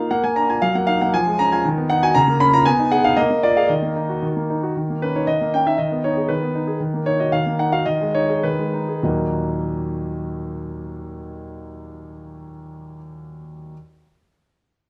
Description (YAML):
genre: classical-period piano sonatina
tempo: 97-119 BPM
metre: 2/4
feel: straight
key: Eb minor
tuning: A4 = 440 Hz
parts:
  - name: clear grand piano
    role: solo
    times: 0.0-13.7 s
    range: Eb2 to Cb6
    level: -21 LUFS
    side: equal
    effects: none
room: moderate large studio reverb, RT60 1.3 s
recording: dark, warm production, lossy compression artefacts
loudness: -20 LUFS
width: mono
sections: 0.0-4.8 A section; 4.8-9.0 B section; 9.0-11.5 C section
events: slowing down 6.3-9.0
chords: 0.1 Bb; 0.6 Ebm/Gb; 1.1 Db/F; 1.6 B/D#; 2.1 Bbm/Db; 2.7 Abm/Cb; 3.2 Bb5; 3.7 Ebm; 4.8 Eb5; 5.8 Abm/Eb; 6.8 Ebm; 7.9 Abm/Eb; 9.0 Ebm